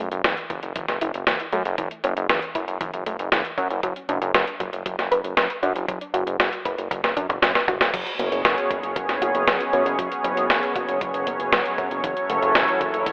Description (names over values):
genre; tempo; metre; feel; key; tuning
synthwave; 117 BPM; 4/4; straight; unclear; A4 = 440 Hz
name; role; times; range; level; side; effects
soft round pluck; arpeggios; 0.0-13.1 s; E3 to B4; -30 LUFS; equal; chorus, digital delay
fat analog bass; bass; 0.0-13.1 s; F#1 to F#2; -26 LUFS; equal; sidechain pumping
clean 12-bit digital drum machine; drums; 0.1-13.1 s; crash cymbal, hi-hat, snare drum, toms; -22 LUFS; equal; none
electronic kick drum; drums; 0.5-13.1 s; none; -32 LUFS; equal; none
chorused pulse-width pad; sustained chords; 7.9-13.1 s; F#3 to C#5; -23 LUFS; equal; sidechain pumping
room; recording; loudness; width
moderate scoring stage reverb, RT60 1.9 s, digital ambience; telephone sound; -20 LUFS; side -29 dB against mid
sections
0.0-13.1 A section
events
drum fill 6.9-7.9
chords
0.0 A6/F#; 3.8 Bm/F#; 7.9 C#7sus4/F#; 12.0 A6/F#